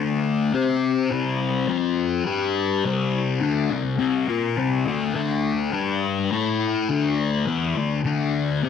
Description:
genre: rock.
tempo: 208 BPM (eighths).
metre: 7/8.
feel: straight.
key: D minor.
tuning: A4 = 439 Hz.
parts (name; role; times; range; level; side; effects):
thick fuzz guitar; solo; 0.0-8.7 s; C3 to C5; -21 LUFS; left 5 dB; distortion, phaser.
room: moderate echo chamber reverb, RT60 1.4 s.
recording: none.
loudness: -21 LUFS.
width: side -7 dB against mid.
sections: 0.0-8.7 A section.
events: none.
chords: 0.0 D5; 0.5 C5; 1.7 F5; 2.3 G5; 2.9 C5; 5.2 D5; 5.7 G5; 6.3 A5; 6.9 D5.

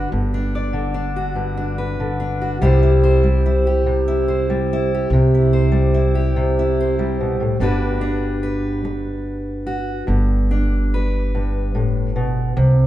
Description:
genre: acoustic folk duo or small band.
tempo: 48 BPM (dotted quarters).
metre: 6/8.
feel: straight.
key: G major.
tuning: A4 = 440 Hz.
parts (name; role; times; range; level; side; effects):
fingerpicked steel-string acoustic guitar; accompaniment; 0.0-12.9 s; G2 to D5; -19 LUFS; equal; none.
upright bass; bass; 0.0-12.9 s; G1 to C2; -19 LUFS; equal; none.
room: moderate concert hall reverb, RT60 1.8 s.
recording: dark, warm production.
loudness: -16 LUFS.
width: side -14 dB against mid.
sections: 0.0-7.6 A section; 7.6-12.9 B section.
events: none.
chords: 0.0 Gmaj7; 2.6 C; 7.6 Gmaj7.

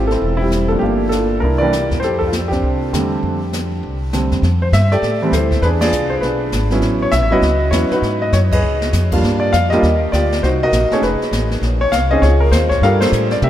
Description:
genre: jazz piano trio.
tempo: 200 BPM.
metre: 4/4.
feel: swing 63% on 8ths.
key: unclear.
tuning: A4 = 440 Hz.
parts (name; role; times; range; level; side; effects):
warm concert grand piano; melody; 0.0-13.5 s; D3 to F5; -16 LUFS; equal; none.
upright bass; bass; 0.0-13.5 s; E1 to C3; -18 LUFS; equal; none.
jazz brush drum kit; drums; 0.1-13.5 s; brushed snare drum, crash cymbal, hi-hat, kick drum, ride cymbal, snare drum, toms; -24 LUFS; equal; none.
room: moderate cathedral reverb, RT60 5.6 s.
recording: in a vast, echoing space.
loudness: -13 LUFS.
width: side -12 dB against mid.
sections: 0.0-4.4 A section; 4.4-13.5 B section.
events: band accent 5.8, 8.5, 13.0; drum fill 8.6-8.9.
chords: 0.0 Am7; 0.8 Gm9; 1.4 C9; 2.0 F69; 4.4 Fmaj9; 5.6 E7b9; 6.8 A69; 8.0 Abm7; 8.6 Db9; 9.2 Ebmaj9; 10.4 Cm7b5; 11.0 Fm7b5; 11.6 Bbm11; 12.8 Gm9.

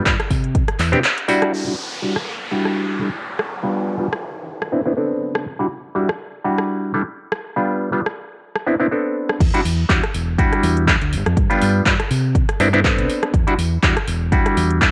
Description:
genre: filtered disco house.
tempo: 122 BPM.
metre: 4/4.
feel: swing 55% on 16ths.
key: E minor.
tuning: A4 = 440 Hz.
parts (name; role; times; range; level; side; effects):
clav; accompaniment; 0.0-14.9 s; G3 to A4; -22 LUFS; equal; phaser, sidechain pumping, low-pass filter, cassette tape.
fingered electric bass; bass; 0.1-1.0, 9.4-14.9 s; E1 to C3; -22 LUFS; equal; sidechain pumping, low-pass filter.
electronic kick drum; drums; 0.1-0.7, 9.4-14.9 s; none; -21 LUFS; equal; cassette tape.
house drum kit; drums; 0.1-14.9 s; crash cymbal, handclaps, hi-hat, rim click; -25 LUFS; equal; cassette tape.
downlifter; sound effects; 1.5-5.5 s; none; -31 LUFS; equal; none.
room: light reverb, digital ambience.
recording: home recording on cassette.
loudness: -19 LUFS.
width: mono.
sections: 0.0-1.5 A section; 1.5-9.4 B section; 9.4-14.9 C section.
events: filter sweep 0.0-1.5; filter sweep on clav 1.5-9.4; drop 9.4-14.9.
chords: 0.0 G7; 0.6 Cadd9; 1.5 Em9; 3.3 G7; 4.5 Cmaj9; 5.5 Em9; 7.2 G7; 8.4 Cmaj9; 9.4 Em9; 11.1 G7; 12.4 Cmaj9; 13.3 Em9.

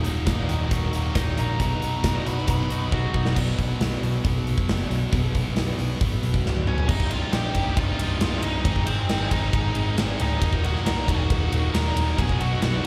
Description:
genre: quiet-loud alternative rock.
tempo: 136 BPM.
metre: 4/4.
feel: straight.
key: unclear.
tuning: A4 = 440 Hz.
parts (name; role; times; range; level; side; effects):
twangy electric guitar; arpeggios; 0.0-3.4 s; Eb2 to F#4; -37 LUFS; equal; warbly pitch drift, slapback echo, analog delay.
overdriven electric guitar; riff; 0.0-12.9 s; C2 to Ab4; -33 LUFS; equal; none.
thick fuzz guitar; riff; 0.0-12.9 s; C2 to Ab4; -35 LUFS; equal; distortion, slapback echo.
picked electric bass; bass; 0.0-12.8 s; C1 to B1; -28 LUFS; equal; none.
huge arena drum kit; drums; 0.0-12.9 s; crash cymbal, hi-hat, kick drum, ride cymbal, snare drum, toms; -28 LUFS; equal; none.
nasal lead guitar with a parked wah; melody; 1.2-2.9, 6.7-12.9 s; C4 to B5; -33 LUFS; equal; overdrive, slapback echo, analog delay.
room: little or no reverb.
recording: live gig heard through the venue's PA, club reverb.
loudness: -24 LUFS.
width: mono.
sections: 0.0-3.4 A section; 3.4-6.9 B section; 6.9-12.9 C section.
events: lead electric guitar solo 0.0-3.4; drum fill 2.9-3.4, 6.4-6.9.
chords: 0.0 Ebm; 1.6 B; 3.4 B5; 6.9 Cm; 8.7 Ab; 10.4 Ebm; 12.2 B.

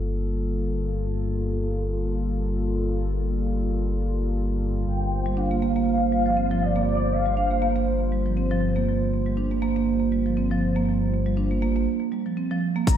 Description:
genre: afro house.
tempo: 120 BPM.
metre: 4/4.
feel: swing 56% on 16ths.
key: G minor.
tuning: A4 = 439 Hz.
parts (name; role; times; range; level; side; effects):
warm analog pad; sustained chords; 0.0-13.0 s; G3 to C5; -29 LUFS; equal; chorus, sidechain pumping.
dark detuned saw bass; bass; 0.0-13.0 s; G1; -26 LUFS; left 1 dB; sidechain pumping.
expressive synth lead; melody; 4.9-8.1, 12.9-13.0 s; D5 to Bb5; -26 LUFS; left 2 dB; ensemble chorus, tape echo.
marimba with soft mallets; arpeggios; 5.3-12.9 s; F3 to D4; -25 LUFS; right 5 dB; sidechain pumping, tape echo.
electronic hi-hat and shaker; drums; 12.9-13.0 s; none; -31 LUFS; left 3 dB; overdrive, studio reverb.
electronic kick drum; drums; 12.9-13.0 s; none; -18 LUFS; left 1 dB; studio reverb.
room: moderate lush hall reverb, RT60 1.7 s.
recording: dreamy mix soaked in reverb.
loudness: -22 LUFS.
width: side -9 dB against mid.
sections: 0.0-12.9 A section.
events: break 11.9-12.9.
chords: 0.0 Gm9.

